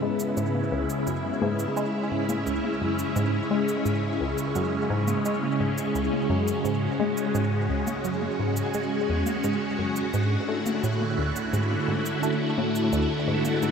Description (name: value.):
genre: ambient, sequencer-driven space music.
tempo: 86 BPM.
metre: 4/4.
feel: straight.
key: C# phrygian.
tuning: A4 = 440 Hz.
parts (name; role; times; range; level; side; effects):
phased string machine; sustained chords; 0.0-13.7 s; C#3 to F#4; -26 LUFS; equal; ensemble chorus, phaser.
tight sequenced synth; riff; 0.0-13.7 s; C#2 to A3; -28 LUFS; equal; chorus, tape echo.
cabasa and congas; percussion; 0.2-13.7 s; none; -36 LUFS; left 1 dB; overdrive, tape echo.
room: wet shimmer reverb, RT60 7.1 s.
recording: none.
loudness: -24 LUFS.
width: side -6 dB against mid.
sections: 0.0-13.7 A section.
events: none.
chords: 0.0 C#m7; 10.1 D.